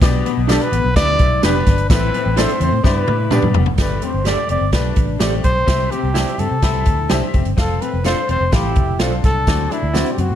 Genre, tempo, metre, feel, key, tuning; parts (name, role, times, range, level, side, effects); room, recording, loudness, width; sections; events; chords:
uptempo 1960s-style soul; 127 BPM; 4/4; straight; A4 = 440 Hz
bright upright piano; accompaniment; 0.0-10.2 s; G2 to F5; -26 LUFS; left 8 dB
vintage muted fingered electric bass; bass; 0.0-10.4 s; E1 to C3; -20 LUFS; equal
swinging big-band drum kit; drums; 0.0-10.3 s; hi-hat, kick drum, snare drum, toms; -19 LUFS; equal
congas; percussion; 0.0-10.3 s; -31 LUFS; right 3 dB
tambourine; percussion; 0.0-10.1 s; -35 LUFS; right 8 dB
electric guitar through a small old amp; riff; 0.3-10.3 s; B3 to E4; -26 LUFS; left 10 dB; lush chorus
mellow trumpet; melody; 0.5-10.4 s; E4 to D5; -21 LUFS; equal; slapback echo
electric guitar through a small old amp; stabs; 0.5-10.1 s; D4 to D5; -24 LUFS; right 8 dB; tremolo
light reverb, small room ambience; dark, warm production; -14 LUFS; side -10 dB against mid
0.0-3.8 A section; 3.8-10.4 B section
drum fill 2.8-3.8
0.0 G; 1.9 Am; 2.8 G; 3.8 Gsus2; 5.7 C; 7.6 F; 9.5 D7